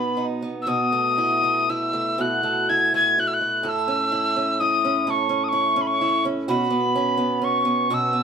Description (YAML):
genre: celtic folk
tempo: 39-43 BPM (dotted quarters)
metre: 6/8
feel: rubato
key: unclear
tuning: A4 = 440 Hz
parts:
  - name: breathy mellow mid whistle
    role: melody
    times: 0.0-8.2 s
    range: B5 to G#6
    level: -21 LUFS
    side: left 1 dB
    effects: none
  - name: picked acoustic archtop guitar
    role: accompaniment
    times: 0.0-8.2 s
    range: A2 to A4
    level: -24 LUFS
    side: right 3 dB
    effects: none
room: moderate studio reverb, RT60 0.6 s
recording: band playing live in one room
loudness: -19 LUFS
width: side -6 dB against mid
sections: 0.0-8.2 A section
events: none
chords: 0.0 B; 0.7 B7sus4; 3.6 A; 6.5 Bsus2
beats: | 0.67 2.18 | 3.65 5.08 | 6.49 7.91